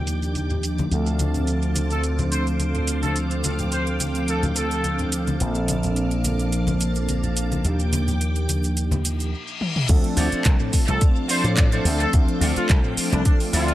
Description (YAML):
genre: nu-disco, nu disco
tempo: 107 BPM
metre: 4/4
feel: swing 54% on 16ths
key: D phrygian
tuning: A4 = 441 Hz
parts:
  - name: mellow synth brass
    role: accompaniment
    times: 0.0-13.7 s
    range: F3 to D5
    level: -26 LUFS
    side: equal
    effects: chorus, sidechain pumping, tape echo
  - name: string machine, full ensemble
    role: sustained chords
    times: 0.0-13.7 s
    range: Bb3 to D6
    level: -33 LUFS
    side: equal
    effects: ensemble chorus, sidechain pumping
  - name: slap bass with an envelope filter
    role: bass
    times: 0.0-13.7 s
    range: Bb1 to A2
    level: -24 LUFS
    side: equal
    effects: none
  - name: house drum kit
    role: drums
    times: 0.1-13.7 s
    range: crash cymbal, handclaps, hi-hat, shaker, toms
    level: -28 LUFS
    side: right 1 dB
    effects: low-pass filter on hats, low-pass filter on perc, low-pass filter on toms, low-pass filter on cymbals, low-pass filter on snare, low-pass filter on room, tape echo
  - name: egg shaker and congas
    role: percussion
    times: 0.1-9.3 s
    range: none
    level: -29 LUFS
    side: left 2 dB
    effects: none
  - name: warm trumpet section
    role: melody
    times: 1.9-5.0, 10.9-13.7 s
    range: D4 to C5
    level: -29 LUFS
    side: equal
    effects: vintage 12-bit sampler grit, tape echo
  - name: reverse cymbal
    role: sound effects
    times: 9.1-9.9 s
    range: none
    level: -30 LUFS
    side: left 6 dB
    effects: none
  - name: electronic kick drum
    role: drums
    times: 9.9-13.4 s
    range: none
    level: -18 LUFS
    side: equal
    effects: none
  - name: electric guitar with an envelope filter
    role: riff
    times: 10.2-13.7 s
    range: F4 to F5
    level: -29 LUFS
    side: right 2 dB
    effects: lush chorus, tape echo
room: light reverb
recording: echo-heavy mix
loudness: -19 LUFS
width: side -14 dB against mid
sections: 0.0-9.9 A section; 9.9-13.7 B section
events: filter sweep on drum 0.0-9.9; reverse cymbal 9.1-9.9; drum fill 9.6; drop 9.9-13.7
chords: 0.0 Ebmaj7; 0.9 Dm7; 5.4 Bbmaj7; 7.6 Ebmaj7; 9.9 Dm7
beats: 0.36 | 0.92 1.48 2.04 2.60 | 3.16 3.72 4.28 4.84 | 5.41 5.97 6.53 7.09 | 7.65 8.21 8.77 9.33 | 9.89 10.45 11.01 11.57 | 12.13 12.70 13.26